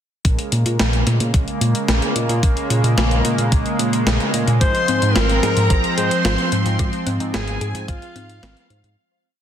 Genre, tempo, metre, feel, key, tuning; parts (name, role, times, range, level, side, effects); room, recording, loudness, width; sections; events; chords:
synthwave; 110 BPM; 4/4; straight; Bb minor; A4 = 440 Hz
chorused pulse-width pad; sustained chords; 0.2-8.9 s; Db3 to C4; -23 LUFS; right 1 dB
chorused synth bass; bass; 0.2-9.0 s; Ab1 to Bb2; -20 LUFS; equal; sidechain pumping
electronic kick drum; drums; 0.2-8.0 s; -19 LUFS; equal
gated 80s digital drum machine; drums; 0.2-8.9 s; hi-hat, snare drum; -23 LUFS; left 1 dB; gated reverb, gated reverb snare
clear alto saxophone; melody; 4.6-8.9 s; F4 to C5; -23 LUFS; left 2 dB; ping-pong delay
string machine, violins; second line; 4.6-8.9 s; F5 to C6; -27 LUFS; equal; ensemble chorus, ping-pong delay
thumb-piano-like synth pluck; arpeggios; 4.6-8.9 s; Ab3 to C5; -28 LUFS; left 4 dB; chorus, ping-pong delay
light reverb; dense, heavily limited modern master; -16 LUFS; side -9 dB against mid
0.2-9.0 verse
fade-out 6.1-9.0
0.2 Bbm7; 4.6 Fm/Ab